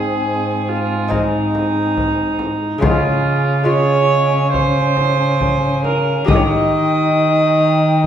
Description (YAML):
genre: classical, renaissance-style consort dance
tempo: 70 BPM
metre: 4/4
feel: straight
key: unclear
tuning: A4 = 441 Hz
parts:
  - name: mellow alto recorder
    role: melody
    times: 0.0-8.1 s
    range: G5 to Bb5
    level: -25 LUFS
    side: equal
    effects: none
  - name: rich viola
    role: second line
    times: 0.0-8.1 s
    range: Eb4 to Eb5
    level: -18 LUFS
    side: right 2 dB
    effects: none
  - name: lute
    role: accompaniment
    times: 0.0-8.1 s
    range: Ab2 to G4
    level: -23 LUFS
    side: left 1 dB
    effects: none
  - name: warm trombone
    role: accompaniment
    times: 0.0-8.1 s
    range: C4 to Eb4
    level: -23 LUFS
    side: left 3 dB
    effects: none
  - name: rich cello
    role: bass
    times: 0.0-8.1 s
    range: Ab2 to Eb3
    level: -20 LUFS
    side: right 1 dB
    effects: none
  - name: frame drum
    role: percussion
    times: 1.1-8.1 s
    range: none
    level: -21 LUFS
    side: left 2 dB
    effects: none
room: wet recital hall reverb, RT60 1.2 s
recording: recorded in a church or concert hall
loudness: -14 LUFS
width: side -9 dB against mid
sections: 0.0-8.1 A section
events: none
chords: 0.0 Ab; 2.8 Db; 6.3 Eb